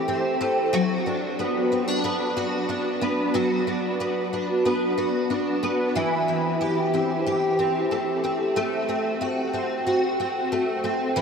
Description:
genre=dream pop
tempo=92 BPM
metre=4/4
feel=straight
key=A dorian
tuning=A4 = 439 Hz
part: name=picked twelve-string acoustic guitar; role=solo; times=0.0-11.2 s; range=E3 to G4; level=-22 LUFS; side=equal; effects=ensemble chorus, diffuse ambient delay
room=wet huge ambient reverb, RT60 8.6 s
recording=dreamy mix soaked in reverb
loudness=-22 LUFS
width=side -6 dB against mid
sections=0.0-6.0 A section; 6.0-11.2 B section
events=none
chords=0.0 Am7; 0.7 Bm/F#; 6.0 Am7; 8.6 Am6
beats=0.08 | 0.73 1.39 2.04 2.69 | 3.34 3.99 4.65 5.30 | 5.95 6.60 7.25 7.91 | 8.56 9.21 9.86 10.52 | 11.17

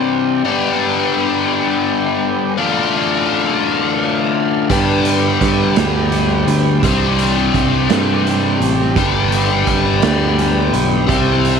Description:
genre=psychedelic rock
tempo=56 BPM (dotted quarters)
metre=6/8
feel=straight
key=unclear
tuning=A4 = 440 Hz
part: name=combo organ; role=sustained chords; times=0.0-11.6 s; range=F4 to G5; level=-21 LUFS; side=right 11 dB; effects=none
part: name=biting overdriven guitar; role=riff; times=0.0-11.6 s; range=G2 to G4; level=-16 LUFS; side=left 8 dB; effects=flanger
part: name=picked electric bass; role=bass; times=4.7-11.6 s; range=G1 to G2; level=-18 LUFS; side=right 3 dB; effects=none
part: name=raw garage drum kit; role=drums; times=4.7-11.6 s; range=hi-hat, kick drum, snare drum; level=-21 LUFS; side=right 7 dB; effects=none
room=light reverb, studio reverb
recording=1960s-style stereo with parts hard left and right, faint mains hum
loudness=-13 LUFS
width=side -6 dB against mid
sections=0.0-11.6 A section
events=none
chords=0.4 G; 2.6 Dm; 4.7 G; 6.8 Csus2; 9.0 G; 11.1 C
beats=| 0.44 1.51 | 2.57 3.64 | 4.70 5.76 | 6.83 7.89 | 8.95 10.01 | 11.08

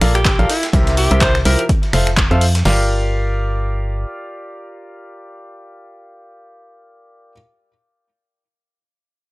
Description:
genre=piano house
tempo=125 BPM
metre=4/4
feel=swing 57% on 16ths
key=G dorian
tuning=A4 = 440 Hz
part: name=clear grand piano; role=riff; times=0.0-7.3 s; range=C3 to F5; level=-22 LUFS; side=equal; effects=sidechain pumping, analog delay
part: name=organ-like FM bass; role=bass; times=0.0-4.1 s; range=F1 to F2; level=-17 LUFS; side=equal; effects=sidechain pumping
part: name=breakbeat sampler-style drum kit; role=drums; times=0.0-2.6 s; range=hi-hat, snare drum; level=-29 LUFS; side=equal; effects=none
part: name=house drum kit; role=drums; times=0.0-2.6 s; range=finger snaps, handclaps, hi-hat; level=-20 LUFS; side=equal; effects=none
part: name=bright alto saxophone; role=melody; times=0.1-1.7 s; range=E4 to C5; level=-21 LUFS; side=equal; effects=vintage 12-bit sampler grit
part: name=punchy analog drum machine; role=drums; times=0.3-2.8 s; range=crash cymbal, kick drum, snare drum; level=-18 LUFS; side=equal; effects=overdrive
room=digital ambience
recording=dry, gritty hardware recording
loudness=-14 LUFS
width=side -21 dB against mid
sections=0.0-2.7 A section; 2.7-6.5 B section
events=drop 0.0-2.7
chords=0.5 C7; 1.7 Fmaj7; 2.7 Gm7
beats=0.25 | 0.73 1.21 1.69 2.17 | 2.65 3.13 3.61 4.09 | 4.57 5.05 5.53 6.01

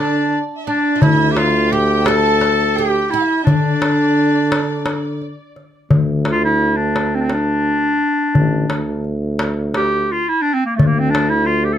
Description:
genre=Turkish makam ensemble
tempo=172 BPM (eighths)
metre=7/8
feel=straight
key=D makam ussak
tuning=A4 = 440 Hz
part: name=clear clarinet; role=melody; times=0.0-11.8 s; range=A3 to A4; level=-17 LUFS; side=equal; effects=none
part: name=clear studio violin section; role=second line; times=0.0-5.2 s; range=D5 to A5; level=-27 LUFS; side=equal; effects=tape echo
part: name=oud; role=second line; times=0.0-5.2 s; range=D4 to A4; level=-24 LUFS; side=right 7 dB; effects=none
part: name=warm tuba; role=bass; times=0.0-11.8 s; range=A1 to D3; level=-20 LUFS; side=right 1 dB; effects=none
part: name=darbuka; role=percussion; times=0.7-11.6 s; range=none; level=-17 LUFS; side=left 2 dB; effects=none
room=little or no reverb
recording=close, detailed microphones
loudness=-14 LUFS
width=side -10 dB against mid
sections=0.0-5.9 A section; 5.9-11.8 B section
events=none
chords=none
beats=0.32 0.67 | 1.02 1.37 1.72 2.07 2.42 2.77 3.11 | 3.46 3.81 4.16 4.51 4.86 5.21 5.56 | 5.91 6.26 6.61 6.95 7.30 7.65 8.00 | 8.35 8.70 9.05 9.40 9.75 10.10 10.44 | 10.79 11.14 11.49

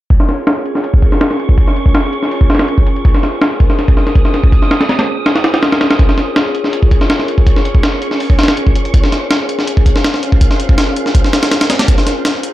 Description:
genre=drum and bass, jungle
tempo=163 BPM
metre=4/4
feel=straight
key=Bb minor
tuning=A4 = 439 Hz
part: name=jungle sampler-style drum kit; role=drums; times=0.1-12.5 s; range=hi-hat, kick drum, snare drum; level=-10 LUFS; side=equal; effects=low-pass filter on hats, low-pass filter on kick, low-pass filter on snare, low-pass filter on room
part: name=wind-like tuned noise texture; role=texture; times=0.6-12.5 s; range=Db4 to Eb6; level=-24 LUFS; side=right 1 dB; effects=built-in reverb
room=little or no reverb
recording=none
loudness=-10 LUFS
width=side -15 dB against mid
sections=0.1-12.5 A section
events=filter sweep on drum 0.1-12.5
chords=0.1 Bbm9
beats=| 0.11 0.47 0.84 1.21 | 1.58 1.95 2.31 2.68 | 3.05 3.42 3.79 4.16 | 4.52 4.89 5.26 5.63 | 6.00 6.36 6.73 7.10 | 7.47 7.84 8.20 8.57 | 8.94 9.31 9.68 10.04 | 10.41 10.78 11.15 11.52 | 11.88 12.25

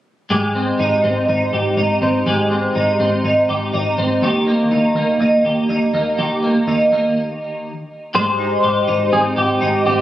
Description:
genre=jangly indie pop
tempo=122 BPM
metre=4/4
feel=straight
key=Ab major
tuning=A4 = 436 Hz
part: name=twelve-string electric guitar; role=arpeggios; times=0.3-10.0 s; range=Eb3 to G4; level=-16 LUFS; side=right 1 dB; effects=ensemble chorus, digital delay
part: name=vintage muted picked electric bass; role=bass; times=0.3-10.0 s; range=Ab1 to Eb2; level=-23 LUFS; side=equal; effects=none
part: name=electric guitar through a small old amp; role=melody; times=8.2-10.0 s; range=G4 to C5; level=-16 LUFS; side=left 1 dB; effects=wide subtle chorus, digital delay
room=moderate spring reverb, RT60 2.0 s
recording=recorded on a phone in the room, club reverb, compression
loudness=-15 LUFS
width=side -13 dB against mid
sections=0.3-8.1 A section; 8.1-10.0 B section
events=stop 7.2-8.1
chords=0.3 Abmaj7; 4.2 Eb; 8.1 Abmaj7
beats=| 0.30 0.79 1.28 1.77 | 2.26 2.75 3.24 3.73 | 4.22 4.71 5.20 5.69 | 6.18 6.67 7.17 7.65 | 8.14 8.63 9.12 9.60

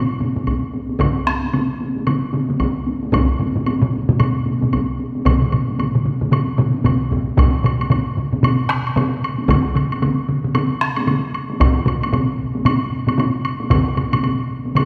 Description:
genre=japanese traditional, taiko drum ensemble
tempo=113 BPM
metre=4/4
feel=swing 60% on 16ths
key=none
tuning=none
part: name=taiko ensemble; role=percussion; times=0.2-14.9 s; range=none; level=-24 LUFS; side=equal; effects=none
part: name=taiko ensemble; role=percussion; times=0.2-14.9 s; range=none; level=-22 LUFS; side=equal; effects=none
part: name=taiko ensemble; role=percussion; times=0.5-13.9 s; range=none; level=-23 LUFS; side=equal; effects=none
part: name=woodblock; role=percussion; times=0.5-14.9 s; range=none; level=-29 LUFS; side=equal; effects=none
part: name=solo taiko drums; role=percussion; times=1.0-14.9 s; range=none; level=-24 LUFS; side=equal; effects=none
room=wet concert hall reverb, RT60 2.0 s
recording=none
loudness=-19 LUFS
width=mono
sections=0.0-7.4 A section; 7.4-14.9 B section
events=none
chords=none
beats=0.47 | 1.00 1.53 2.07 2.60 | 3.13 3.67 4.20 4.73 | 5.26 5.79 6.32 6.85 | 7.38 7.91 8.44 8.97 | 9.49 10.02 10.55 11.08 | 11.60 12.13 12.65 13.18 | 13.71 14.23 14.76

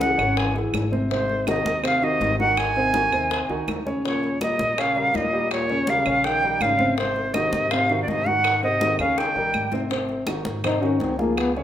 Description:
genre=Afro-Cuban jazz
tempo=164 BPM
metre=4/4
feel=straight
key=unclear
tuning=A4 = 440 Hz
part: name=bright reedy jazz flute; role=melody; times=0.0-9.7 s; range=C5 to Ab5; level=-22 LUFS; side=right 1 dB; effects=none
part: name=dark trombone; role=second line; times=0.0-11.6 s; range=Ab2 to Eb4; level=-28 LUFS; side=left 3 dB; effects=none
part: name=dark grand piano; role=accompaniment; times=0.0-11.6 s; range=C3 to Db5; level=-27 LUFS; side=right 1 dB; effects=none
part: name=upright bass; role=bass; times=0.0-11.6 s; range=Ab1 to Ab2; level=-31 LUFS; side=left 1 dB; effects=none
part: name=bongos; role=percussion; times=0.0-11.6 s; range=none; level=-32 LUFS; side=left 6 dB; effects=none
part: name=congas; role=percussion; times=0.0-11.6 s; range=none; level=-33 LUFS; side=equal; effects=none
part: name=claves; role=percussion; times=0.2-11.6 s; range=none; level=-34 LUFS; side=right 5 dB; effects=none
room=wet large studio reverb, RT60 1.4 s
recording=minimal, uncompressed stereo recording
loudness=-20 LUFS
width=side -10 dB against mid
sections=0.0-9.9 A section; 9.9-11.6 B section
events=drum fill 9.2-9.9; trombone solo 9.9-11.6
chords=0.0 Dbm; 1.1 Ab7; 4.0 Eb9; 7.0 Ab7; 9.2 Eb7; 9.9 Ab7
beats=0.01 0.37 0.74 | 1.11 1.47 1.84 2.21 | 2.58 2.94 3.31 3.68 | 4.04 4.41 4.78 5.14 | 5.51 5.88 6.24 6.61 | 6.98 7.34 7.71 8.08 | 8.44 8.81 9.18 9.54 | 9.91 10.28 10.64 11.01 | 11.37

